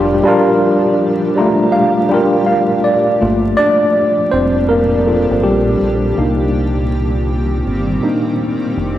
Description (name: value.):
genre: lo-fi hip hop.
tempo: 81 BPM.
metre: 4/4.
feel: swing 62% on 16ths.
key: G minor.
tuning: A4 = 440 Hz.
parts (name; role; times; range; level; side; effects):
tine electric piano; accompaniment; 0.0-9.0 s; G3 to Bb5; -13 LUFS; equal; overdrive, fast stereo tremolo, cassette tape.
granular cloud pad; sustained chords; 0.0-9.0 s; Bb2 to G4; -21 LUFS; equal; built-in reverb, cassette tape.
deep dub fingered electric bass; bass; 0.0-9.0 s; F1 to C2; -19 LUFS; equal; none.
room: wet lush hall reverb, RT60 2.9 s.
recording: home recording on cassette, vinyl crackle.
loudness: -12 LUFS.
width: side -12 dB against mid.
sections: 0.0-3.2 A section; 3.2-9.0 A section.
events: tine electric piano fill 1.0-3.2; tine electric piano solo 3.2-9.0.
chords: 0.0 Gm7; 6.2 Cm7.